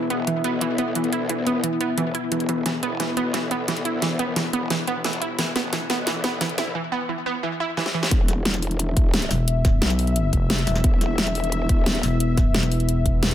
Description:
dark technical drum and bass; 176 BPM; 4/4; straight; A4 = 439 Hz
dark analog pad; sustained chords; 0.0-13.3 s; B3 to E5; -27 LUFS; left 3 dB; chorus, sidechain pumping
growl bass; bass; 0.0-12.0 s; E1 to D2; -29 LUFS; equal; chorus, tube saturation, sidechain pumping, high-pass filter
wide unison pluck; arpeggios; 0.1-8.1 s; E3 to E4; -25 LUFS; right 3 dB; sidechain pumping, ping-pong delay
dubstep drum kit; drums; 0.1-13.3 s; hi-hat, snare drum; -25 LUFS; left 1 dB; high-pass filter on hats, high-pass filter on snare, high-pass filter on room
electronic kick drum; drums; 8.1-13.1 s; -20 LUFS; equal
growling FM bass; bass; 9.3-13.3 s; E1 to B1; -22 LUFS; equal
moderate digital room reverb, RT60 1.3 s, digital ambience; -20 LUFS; side -11 dB against mid
0.0-8.1 A section; 8.1-13.3 B section
build-up 0.0-8.1; drum fill 2.7-6.8, 7.8-8.1; drop 8.1-13.3
0.0 E5

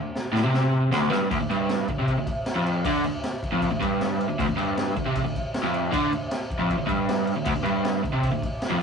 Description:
garage rock duo or trio; 156 BPM; 4/4; straight; D minor; A4 = 440 Hz
crunchy overdriven guitar; riff; 0.0-8.8 s; D2 to D3; -23 LUFS; equal
raw garage drum kit; drums; 0.2-8.7 s; crash cymbal, kick drum, snare drum; -29 LUFS; equal
moderate small room reverb, RT60 0.6 s; rough rehearsal-room recording, nothing above 10.6 kHz; -22 LUFS; side -6 dB against mid
0.0-1.3 A section; 1.3-8.8 B section
drum fill 0.0-1.3

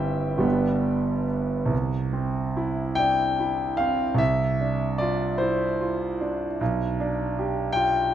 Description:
classical, romantic nocturne for solo piano; 47-53 BPM (dotted quarters); 6/8; rubato; C major; A4 = 440 Hz
clear concert grand piano; solo; 0.0-8.1 s; G1 to G5; -22 LUFS; right 1 dB
moderate recital hall reverb, RT60 1.8 s; faint mains hum; -22 LUFS; side -10 dB against mid
0.0-1.7 A section; 1.7-8.1 B section
0.4 G; 1.7 C; 4.2 Dm7/C; 6.6 G/B

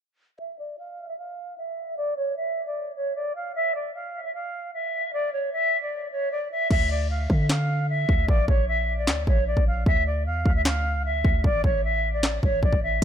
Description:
hip hop, trap; 152 BPM; 4/4; half-time; D harmonic minor; A4 = 440 Hz
concert flute; melody; 0.4-13.0 s; C#5 to F5; -26 LUFS; equal; low-pass filter, digital delay
warm 808-style bass; bass; 6.7-13.0 s; A1 to D3; -25 LUFS; equal
trap drum kit; drums; 6.7-13.0 s; crash cymbal, handclaps, hi-hat, kick drum, snare drum; -23 LUFS; equal
digital ambience; -22 LUFS; side -9 dB against mid
0.4-6.7 A section; 6.7-13.0 B section
filter sweep on flute 0.4-6.7; hi-hats muted 6.7-13.0
0.4 N.C.; 6.7 Dmadd9; 8.3 Bb; 9.9 Dmadd9; 11.4 Aadd11

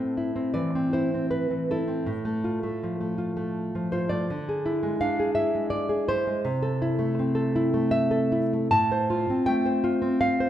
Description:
romantic piece for solo classical guitar; 81 BPM; 3/4; rubato; A minor; A4 = 441 Hz
nylon-string guitar; solo; 0.0-10.5 s; A2 to A5; -23 LUFS; equal
moderate scoring stage reverb, RT60 1.7 s; recorded in a church or concert hall; -23 LUFS; side -11 dB against mid
0.0-10.5 A section
0.0 Am; 2.1 F/A; 4.3 E7/D; 6.5 Am/C; 8.7 F/A

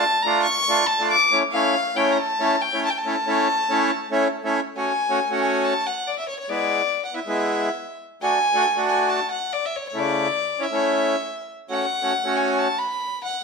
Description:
klezmer; 139 BPM; 4/4; straight; A phrygian dominant, F# minor from 4.8 s; A4 = 440 Hz
warm violin; melody; 0.0-13.4 s; C#5 to D6; -22 LUFS; left 2 dB
accordion; accompaniment; 0.0-12.7 s; C#3 to F#4; -22 LUFS; right 1 dB
wet stone room reverb, RT60 1.0 s; band playing live in one room; -19 LUFS; side -4 dB against mid
0.0-4.8 A section; 4.8-13.4 B section
0.0 Dm; 1.3 A; 4.8 F#m; 6.5 E; 8.2 D; 10.0 A; 11.7 F#m

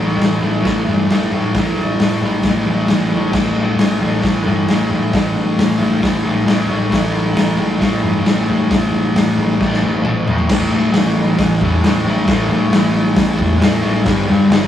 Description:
garage rock duo or trio; 134 BPM; 4/4; straight; A4 = 445 Hz
fuzz guitar; riff; 0.0-14.7 s; G2 to A3; -16 LUFS; equal; distortion
hollow-body short-scale fingered electric bass; bass; 0.0-14.7 s; E1 to A2; -22 LUFS; left 2 dB
raw garage drum kit; drums; 0.2-14.6 s; crash cymbal, hi-hat, kick drum, snare drum, toms; -17 LUFS; left 1 dB
light reverb; rough rehearsal-room recording, tube saturation, small room ambience; -13 LUFS; side -10 dB against mid
0.0-10.5 A section; 10.5-14.7 B section
drum fill 9.6-10.5
0.0 A5; 14.1 G5

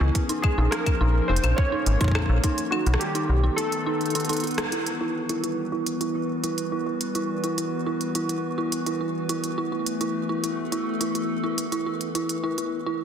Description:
IDM; 105 BPM; 4/4; straight; A4 = 439 Hz
warbly tape-like pad; sustained chords; 0.0-12.7 s; D#3 to C#5; -29 LUFS; left 1 dB; chorus, built-in reverb, sidechain pumping
dark detuned synth bell; arpeggios; 0.0-12.9 s; D#4 to E4; -28 LUFS; right 2 dB; chorus, low-pass filter, digital delay
metallic FM bass; bass; 0.0-3.5 s; E#1 to C#2; -21 LUFS; equal; tube saturation
organic electronic drum kit; drums; 0.1-12.7 s; claves, hi-hat, rim click; -31 LUFS; equal; overdrive, digital delay
electronic kick drum; drums; 0.2-2.6 s; -24 LUFS; equal; overdrive
warbly lo-fi synth keys; melody; 0.4-4.4 s; F#4 to C#5; -29 LUFS; equal; chorus, ping-pong delay
moderate echo chamber reverb, RT60 2.5 s; dense, heavily limited modern master; -23 LUFS; side -8 dB against mid
0.0-4.7 A section; 4.7-13.0 B section
break 3.6-4.7; band accent 4.6; filter sweep on synth bell 4.7-13.0
0.2 A#m; 2.4 B7; 4.7 Emadd9; 9.3 Asus2

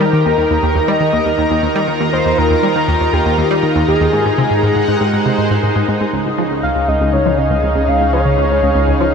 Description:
ambient, sequencer-driven space music; 120 BPM; 4/4; straight; A4 = 440 Hz
pulse-width lead; melody; 0.0-9.1 s; G4 to E#5; -17 LUFS; left 1 dB; chorus, shimmer reverb, ping-pong delay
lush unison pad; sustained chords; 0.0-9.1 s; C#3 to Bb5; -17 LUFS; right 1 dB; chorus, shimmer reverb
tight sequenced synth; riff; 0.0-9.0 s; C#2 to G3; -17 LUFS; equal; chorus, ping-pong delay
warm sub bass; bass; 6.1-9.1 s; C#2; -20 LUFS; equal
wet huge ambient reverb, RT60 9.0 s; -12 LUFS; side -6 dB against mid
0.0-6.1 A section; 6.1-9.1 B section
0.0 Eb; 4.1 Ab7; 6.1 C#add9

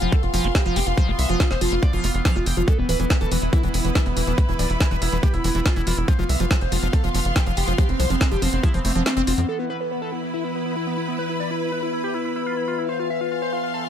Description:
psychedelic trance; 141 BPM; 4/4; straight; A4 = 441 Hz
overdriven synth lead; melody; 0.0-13.9 s; B3 to G5; -27 LUFS; equal; distortion, phaser, cassette tape, sidechain pumping, digital delay
overtone-sweeping drone; sustained chords; 0.0-13.9 s; E3 to B3; -29 LUFS; left 1 dB; chorus, built-in reverb, sidechain pumping
liquid acid bass; riff; 0.0-9.4 s; E3 to F4; -29 LUFS; moving between left 3 dB and right 4 dB; phaser, auto-pan, sidechain pumping, digital delay
tight sequencer bass; bass; 0.0-9.5 s; D1 to F2; -23 LUFS; equal
drum and bass drum kit; drums; 0.0-9.5 s; hi-hat, snare drum; -27 LUFS; equal; overdrive
clear studio string section; texture; 0.0-13.9 s; E4 to C6; -31 LUFS; left 1 dB; sidechain pumping
electronic kick drum; drums; 0.1-8.7 s; -20 LUFS; equal
little or no reverb; -19 LUFS; side -9 dB against mid
0.0-9.5 A section; 9.5-13.9 B section
drop 0.0-9.5; kick drops out 9.1-9.5; filter sweep on synth drone 9.5-13.9
0.0 F5; 2.7 E5; 6.1 F5; 9.5 E5

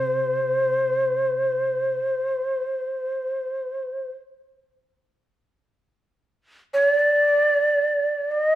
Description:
japanese traditional, Japanese chamber music; free time; C hirajoshi; A4 = 441 Hz
breathy mellow shakuhachi; melody; 0.0-8.6 s; C5 to Eb5; -20 LUFS; equal
koto; accompaniment; 0.0-2.0 s; C3; -37 LUFS; left 2 dB
moderate recital hall reverb, RT60 1.5 s; -20 LUFS; side -13 dB against mid
0.0-8.6 A section

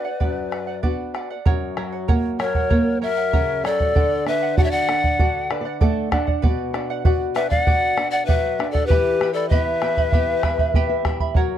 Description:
andean folk, Andean ensemble; 97 BPM; 4/4; straight; B minor; A4 = 440 Hz
polished pan flute; melody; 0.0-11.0 s; B4 to F#5; -23 LUFS; equal; tape echo
breathy bright pan flute; second line; 0.0-11.0 s; G4 to D5; -25 LUFS; left 12 dB
charango; accompaniment; 0.0-11.6 s; E4 to B5; -29 LUFS; right 11 dB
flamenco guitar; accompaniment; 0.0-11.6 s; F#2 to F#5; -26 LUFS; left 1 dB
bombo; percussion; 0.2-11.5 s; -20 LUFS; right 1 dB
little or no reverb; dry, close 1970s-style studio recording; -18 LUFS; side -10 dB against mid
0.0-1.5 A section; 1.5-11.6 B section
nylon-string guitar fill 5.2-6.4, 10.4-11.4
0.0 Bm; 1.5 F#; 4.0 D; 6.4 Bm; 8.9 Em

